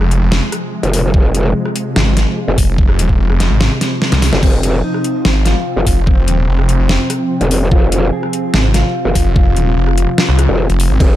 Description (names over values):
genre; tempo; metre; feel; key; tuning
heavy wobble dubstep; 146 BPM; 4/4; half-time; F minor; A4 = 442 Hz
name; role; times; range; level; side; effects
supersaw chords; sustained chords; 0.0-11.2 s; C3 to Eb4; -21 LUFS; right 1 dB; sidechain pumping, low-pass filter
snarling distorted saw bass; bass; 0.0-11.0 s; Eb1 to C2; -13 LUFS; equal; distortion, overdrive
dubstep drum kit; drums; 0.0-11.1 s; crash cymbal, hi-hat, ride cymbal, rim click, snare drum; -18 LUFS; equal; overdrive
growl bass; bass; 0.8-11.2 s; F1 to Gb1; -14 LUFS; equal; chorus, overdrive
electronic kick drum; drums; 1.1-11.1 s; none; -12 LUFS; equal; overdrive
mellow electric guitar; melody; 4.4-11.2 s; C4 to Ab4; -21 LUFS; left 3 dB; ping-pong delay
room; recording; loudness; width
digital ambience; dark, warm production; -11 LUFS; side -13 dB against mid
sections
0.0-11.2 A section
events
drum fill 3.8-4.4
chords
0.0 F5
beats
0.32 0.73 | 1.14 1.55 1.96 2.37 | 2.78 3.19 3.61 4.02 | 4.43 4.84 5.25 5.66 | 6.07 6.48 6.89 7.30 | 7.71 8.13 8.54 8.95 | 9.36 9.77 10.18 10.59 | 11.00